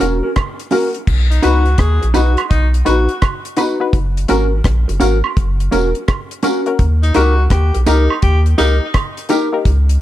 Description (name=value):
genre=roots reggae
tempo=84 BPM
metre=4/4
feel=swing 65% on 16ths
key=unclear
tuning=A4 = 441 Hz
part: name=mellow electric guitar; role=accompaniment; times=0.0-9.6 s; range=C#4 to B4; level=-20 LUFS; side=right 3 dB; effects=tape echo
part: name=filtered dub chord stab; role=stabs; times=0.0-9.7 s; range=A#3 to B4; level=-19 LUFS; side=left 6 dB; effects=chorus
part: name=warm sub bass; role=bass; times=0.0-10.0 s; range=E1 to D#2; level=-14 LUFS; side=equal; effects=none
part: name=deep reggae drum kit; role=drums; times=0.0-10.0 s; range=crash cymbal, hi-hat, kick drum, rim click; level=-18 LUFS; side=equal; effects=none
part: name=tambourine and woodblock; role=percussion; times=0.0-9.5 s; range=none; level=-25 LUFS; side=right 9 dB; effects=none
part: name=warm tenor saxophone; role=second line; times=1.3-8.9 s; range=D#4 to G#4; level=-21 LUFS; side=left 2 dB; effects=tape echo
room=studio ambience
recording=none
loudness=-12 LUFS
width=side -13 dB against mid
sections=0.0-1.1 A section; 1.1-10.0 B section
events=none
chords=0.0 F#; 1.1 B; 3.9 F#; 6.8 D#